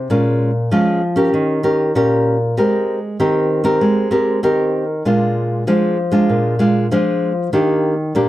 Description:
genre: samba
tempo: 97 BPM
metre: 4/4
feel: straight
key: unclear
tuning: A4 = 440 Hz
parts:
  - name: nylon-string guitar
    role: solo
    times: 0.0-8.3 s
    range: Bb2 to Bb4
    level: -14 LUFS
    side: equal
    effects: none
room: moderate studio reverb, RT60 0.7 s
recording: dark, warm production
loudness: -14 LUFS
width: side -15 dB against mid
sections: 0.0-8.3 A section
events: none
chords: 0.1 Bbm7; 1.3 Eb7; 2.6 Abmaj9; 5.1 Bb7; 7.5 Ebmaj7

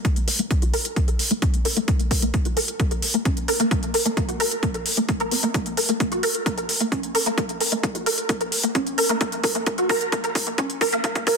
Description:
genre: driving peak-time techno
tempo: 131 BPM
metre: 4/4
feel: straight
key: Bb minor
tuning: A4 = 440 Hz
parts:
  - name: resonant blip pluck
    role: riff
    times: 0.0-11.3 s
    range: Bb3 to Bb4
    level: -23 LUFS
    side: equal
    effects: overdrive, ensemble chorus, sidechain pumping, tape echo
  - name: electronic hi-hat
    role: drums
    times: 0.0-11.4 s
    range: none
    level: -26 LUFS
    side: equal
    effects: overdrive, studio ambience
  - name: electronic kick drum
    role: drums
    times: 0.0-11.4 s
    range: none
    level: -24 LUFS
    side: equal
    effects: overdrive, studio ambience
room: moderate plate reverb, RT60 2.0 s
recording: dense, heavily limited modern master, high-pass filter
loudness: -20 LUFS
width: side -5 dB against mid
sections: 0.0-11.4 A section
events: build-up 0.0-11.4; filter sweep on synth arpeggio sound 0.0-11.4; drum fill 5.5-11.4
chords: none

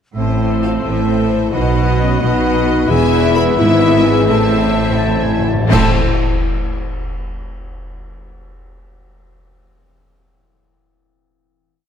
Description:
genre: cinematic, heroic adventure film score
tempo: 86 BPM (dotted quarters)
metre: 6/8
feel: uneven beats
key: A harmonic minor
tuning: A4 = 440 Hz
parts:
  - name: warm oboe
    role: second line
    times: 0.1-5.9 s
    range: C5 to A5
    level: -26 LUFS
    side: right 1 dB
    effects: none
  - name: bright symphonic violin section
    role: second line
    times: 0.2-6.0 s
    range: C5 to B5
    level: -28 LUFS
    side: left 4 dB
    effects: none
  - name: clear clarinet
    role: second line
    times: 0.2-5.9 s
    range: A4 to C5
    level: -28 LUFS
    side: left 5 dB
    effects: none
  - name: hollow silver concert flute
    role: second line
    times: 0.2-6.0 s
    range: A5 to B5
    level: -27 LUFS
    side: left 2 dB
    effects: none
  - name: dark French horn section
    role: sustained chords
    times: 0.2-5.9 s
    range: C4 to B4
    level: -19 LUFS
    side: left 4 dB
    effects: none
  - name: concert harp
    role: arpeggios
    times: 0.2-6.0 s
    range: A2 to C5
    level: -22 LUFS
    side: left 9 dB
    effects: none
  - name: bright symphonic cello section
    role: bass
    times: 0.2-6.0 s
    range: E2 to B2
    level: -19 LUFS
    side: right 3 dB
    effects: none
  - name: rich symphonic double bass section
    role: bass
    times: 0.2-6.0 s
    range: E1 to B1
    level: -18 LUFS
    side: right 3 dB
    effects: none
  - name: clear symphonic violin section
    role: melody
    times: 0.4-6.0 s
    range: C5 to E5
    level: -24 LUFS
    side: left 4 dB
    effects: none
  - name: clear symphonic viola section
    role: accompaniment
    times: 0.4-6.0 s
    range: B3 to A4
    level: -23 LUFS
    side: right 2 dB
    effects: none
  - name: cymbal swell, clash cymbals and concert bass drum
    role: percussion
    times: 2.9-6.6 s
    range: none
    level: -22 LUFS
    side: equal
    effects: none
  - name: timpani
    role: percussion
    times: 4.3-5.9 s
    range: A2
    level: -23 LUFS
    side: equal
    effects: none
room: moderate scoring stage reverb, RT60 1.9 s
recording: dark, warm production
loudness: -12 LUFS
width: side -8 dB against mid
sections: 0.2-5.7 theme; 5.7-7.2 final chord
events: slowing down 2.2-5.7; timpani fill 4.3-5.7; band accent 5.7-6.2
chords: 0.2 Am; 1.5 B; 2.9 E; 4.3 Am

